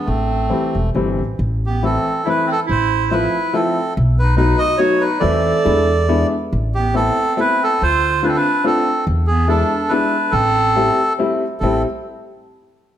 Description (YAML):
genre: musette waltz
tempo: 141 BPM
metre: 3/4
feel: swing 55% on 8ths, rubato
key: A minor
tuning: A4 = 439 Hz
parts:
  - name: bandoneon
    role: melody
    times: 0.0-11.8 s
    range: A3 to D#5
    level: -19 LUFS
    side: right 1 dB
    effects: none
  - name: bright clarinet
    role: second line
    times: 0.0-11.8 s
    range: B3 to A4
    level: -23 LUFS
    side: right 5 dB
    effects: none
  - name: upright bass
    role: bass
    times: 0.1-11.8 s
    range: E1 to E2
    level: -19 LUFS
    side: equal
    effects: none
  - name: warm upright piano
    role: accompaniment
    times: 0.5-11.8 s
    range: E3 to F4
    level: -20 LUFS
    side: left 3 dB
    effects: none
room: moderate recital hall reverb, RT60 1.6 s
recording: none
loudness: -14 LUFS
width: side -10 dB against mid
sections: 0.0-1.4 A section; 1.4-11.6 B section; 11.6-12.9 C section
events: none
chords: 0.1 Am7; 1.4 Am; 2.7 Fmaj7/A; 4.0 B7; 5.2 Am/E; 5.7 E7; 6.5 Amadd9; 7.8 Dm7; 9.1 E7; 10.3 Am7